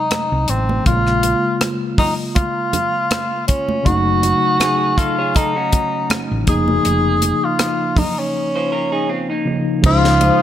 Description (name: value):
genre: lush 1970s-style soul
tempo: 80 BPM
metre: 4/4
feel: swing 54% on 16ths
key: Db major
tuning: A4 = 437 Hz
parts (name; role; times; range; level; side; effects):
- warm tenor saxophone; melody; 0.0-10.4 s; C4 to Ab4; -18 LUFS; equal; none
- tine electric piano; accompaniment; 0.0-10.4 s; C3 to C5; -21 LUFS; left 2 dB; medium stereo tremolo
- tight funk drum kit; drums; 0.1-10.4 s; crash cymbal, hi-hat, kick drum, rim click, snare drum; -19 LUFS; equal; none
- congas; percussion; 0.1-10.4 s; none; -28 LUFS; right 5 dB; none
- hollow-body short-scale fingered electric bass; bass; 0.3-10.3 s; F1 to Db2; -19 LUFS; equal; none
- electric guitar through a small old amp; riff; 4.6-9.8 s; Bb3 to Db5; -24 LUFS; right 4 dB; none
- lush unison pad; sustained chords; 10.1-10.4 s; C5 to Eb6; -22 LUFS; right 1 dB; chorus
room: light reverb, small room ambience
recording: none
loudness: -15 LUFS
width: side -11 dB against mid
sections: 0.0-9.8 A section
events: break 8.3-9.8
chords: 0.0 Ab7; 0.9 Bbm7; 3.9 Gbm6; 6.5 Db69/F; 9.8 Dbmaj9